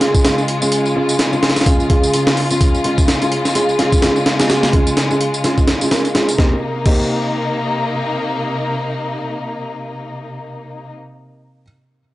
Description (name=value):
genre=breakbeat, breaks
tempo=127 BPM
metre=4/4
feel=swing 57% on 16ths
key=C phrygian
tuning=A4 = 440 Hz
part: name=warm symphonic string section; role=sustained chords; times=0.0-10.9 s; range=C3 to F4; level=-20 LUFS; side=left 2 dB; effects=vintage 12-bit sampler grit, sidechain pumping
part: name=dark baby grand piano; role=stabs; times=0.0-11.6 s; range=Ab3 to Bb4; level=-19 LUFS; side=right 1 dB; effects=low-pass filter, analog delay
part: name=breakbeat sampler-style drum kit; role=drums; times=0.0-7.0 s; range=crash cymbal, hi-hat, kick drum, snare drum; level=-16 LUFS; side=equal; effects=none
part: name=tambourine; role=drums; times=0.1-6.4 s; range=none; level=-26 LUFS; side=right 1 dB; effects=none
room=light reverb, digital ambience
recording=dry, gritty hardware recording, nothing above 10.9 kHz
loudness=-14 LUFS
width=side -16 dB against mid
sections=0.0-6.4 A section; 6.4-10.2 B section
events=none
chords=0.0 Db; 6.4 Cm7